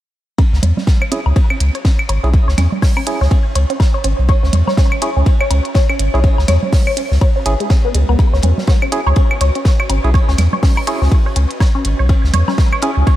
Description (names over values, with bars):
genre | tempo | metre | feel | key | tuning
minimal techno | 123 BPM | 4/4 | swing 59% on 16ths | C# minor | A4 = 440 Hz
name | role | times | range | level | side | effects
resonant blip pluck | riff | 0.4-13.1 s | G#3 to C#5 | -21 LUFS | left 1 dB | phaser, sidechain pumping, tape echo
electronic kick drum | drums | 0.4-13.2 s | none | -12 LUFS | equal | none
vintage drum kit | drums | 0.4-13.2 s | hi-hat, ride cymbal, snare drum | -31 LUFS | left 1 dB | high-pass filter on cymbals, high-pass filter on hats, high-pass filter on snare, high-pass filter on room
woodblock, congas and claves | percussion | 0.4-12.8 s | none | -23 LUFS | right 2 dB | analog delay
granular cloud pad | texture | 1.7-13.2 s | F#4 to E5 | -36 LUFS | equal | none
saturated sub bass | bass | 0.5-13.0 s | G#1 to E2 | -13 LUFS | equal | sidechain pumping
electronic hi-hat | drums | 0.6-12.9 s | none | -26 LUFS | right 2 dB | none
percussive organ stab | stabs | 1.1-12.9 s | C#4 to G#4 | -24 LUFS | right 2 dB | chorus, analog delay
room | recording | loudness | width
light reverb, small room reverb | none | -12 LUFS | side -14 dB against mid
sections
0.4-13.2 A section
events
none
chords
0.4 C#m